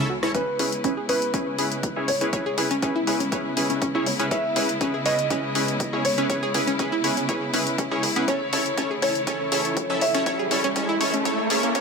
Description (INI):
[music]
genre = progressive house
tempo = 121 BPM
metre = 4/4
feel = straight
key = C# minor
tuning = A4 = 439 Hz
[part]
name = rich studio string section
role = sustained chords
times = 0.0-11.8 s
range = C#3 to E4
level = -30 LUFS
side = left 1 dB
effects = sidechain pumping
[part]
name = analog pluck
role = arpeggios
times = 0.0-11.8 s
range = B3 to C#5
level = -28 LUFS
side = right 1 dB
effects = chorus, sidechain pumping, digital delay
[part]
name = supersaw stab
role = stabs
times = 0.0-11.8 s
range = C#4 to E5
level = -27 LUFS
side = equal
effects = sidechain pumping, low-pass filter, digital delay
[part]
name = plucky analog bass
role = bass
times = 0.0-11.7 s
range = G#1 to C#2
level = -36 LUFS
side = equal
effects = none
[part]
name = deep house drum kit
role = drums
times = 0.2-11.8 s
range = hi-hat, rim click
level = -29 LUFS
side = left 2 dB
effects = high-pass filter on snare, sidechain pumping on hats, high-pass filter on hats, high-pass filter on room
[part]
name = warm grand piano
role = melody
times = 0.3-10.5 s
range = B4 to E5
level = -27 LUFS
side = equal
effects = sidechain pumping, digital delay
[part]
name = electronic kick drum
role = drums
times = 0.3-11.8 s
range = none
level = -30 LUFS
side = equal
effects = high-pass filter on kick, high-pass filter on room
[part]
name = riser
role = sound effects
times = 9.5-11.8 s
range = none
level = -29 LUFS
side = equal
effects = none
[sound]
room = moderate recital hall reverb, RT60 1.4 s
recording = high-pass filter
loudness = -21 LUFS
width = side -5 dB against mid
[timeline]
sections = 0.3-11.8 A section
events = build-up 0.3-11.8; filter sweep on supersaw synth 0.3-11.8; drum fill 8.3-11.8; riser 9.5-11.8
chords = 0.3 C#m7; 8.3 A